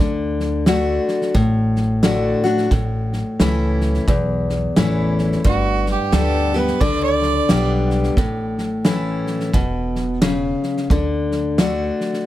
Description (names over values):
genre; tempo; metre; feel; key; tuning
honky-tonk and classic country; 88 BPM; 4/4; swing 60% on 8ths; D major; A4 = 441 Hz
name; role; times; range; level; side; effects
picked steel-string acoustic guitar; accompaniment; 0.0-12.2 s; E2 to G4; -19 LUFS; left 2 dB; none
upright bass; bass; 0.0-11.9 s; E1 to D2; -23 LUFS; right 1 dB; none
natural country drum kit; drums; 0.4-12.2 s; hi-hat, kick drum, snare drum; -20 LUFS; equal; none
clear fiddle; second line; 5.4-7.7 s; F#4 to D5; -22 LUFS; right 6 dB; none
room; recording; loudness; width
little or no reverb; none; -16 LUFS; side -14 dB against mid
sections
0.0-12.3 A section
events
none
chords
0.0 D; 2.7 A; 5.4 G; 8.2 A; 10.9 D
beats
0.66 1.35 2.03 | 2.71 3.40 4.08 4.76 | 5.44 6.12 6.81 7.49 | 8.17 8.86 9.54 10.22 | 10.90 11.58